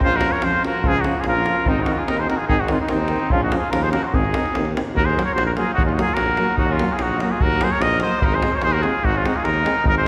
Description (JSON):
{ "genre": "balkan folk, Balkan brass band", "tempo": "146 BPM", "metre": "2/4", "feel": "straight", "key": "Ab mixolydian", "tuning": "A4 = 440 Hz", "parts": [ { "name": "cornet with straight mute", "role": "melody", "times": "0.0-10.1 s", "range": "Eb4 to Eb5", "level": "-24 LUFS", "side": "equal", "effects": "none" }, { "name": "clear trumpet", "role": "second line", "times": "0.0-10.1 s", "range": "C4 to C5", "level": "-29 LUFS", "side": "equal", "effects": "none" }, { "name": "clear euphonium", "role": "accompaniment", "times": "0.0-10.1 s", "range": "Eb3 to Ab3", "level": "-30 LUFS", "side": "equal", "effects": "none" }, { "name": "warm euphonium", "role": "accompaniment", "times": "0.0-10.1 s", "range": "Bb3 to Db4", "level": "-32 LUFS", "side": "equal", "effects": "none" }, { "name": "warm tuba", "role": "bass", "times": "0.0-10.1 s", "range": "Ab1 to F2", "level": "-27 LUFS", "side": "equal", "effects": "none" }, { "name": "davul", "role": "percussion", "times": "0.0-10.0 s", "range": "none", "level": "-26 LUFS", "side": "equal", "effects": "none" } ], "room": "wet church reverb, RT60 3.2 s", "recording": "recorded in a church or concert hall", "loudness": "-20 LUFS", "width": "mono", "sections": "0.0-5.0 A section; 5.0-10.1 B section", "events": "none", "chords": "0.0 Bbm; 1.7 Ab; 3.3 Bbm; 4.1 Ab; 5.0 Ebm; 8.2 Ab" }